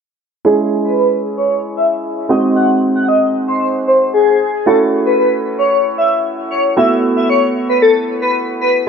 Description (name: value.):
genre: pop.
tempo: 114 BPM.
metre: 4/4.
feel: straight.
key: C# minor.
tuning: A4 = 444 Hz.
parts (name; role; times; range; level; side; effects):
clear baby grand piano; accompaniment; 0.4-8.8 s; G#3 to G#4; -16 LUFS; right 2 dB; low-pass filter.
airy dreamy lead; melody; 0.5-8.7 s; G#4 to F#5; -13 LUFS; left 1 dB; chorus, low-pass filter, tape echo.
room: moderate lush hall reverb, RT60 2.4 s.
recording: nothing above 10.4 kHz.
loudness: -12 LUFS.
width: side -6 dB against mid.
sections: 0.5-8.9 A section.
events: filter sweep 0.5-8.9.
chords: 0.5 C#m; 2.3 G#7; 4.7 F#m7; 6.8 B7sus4.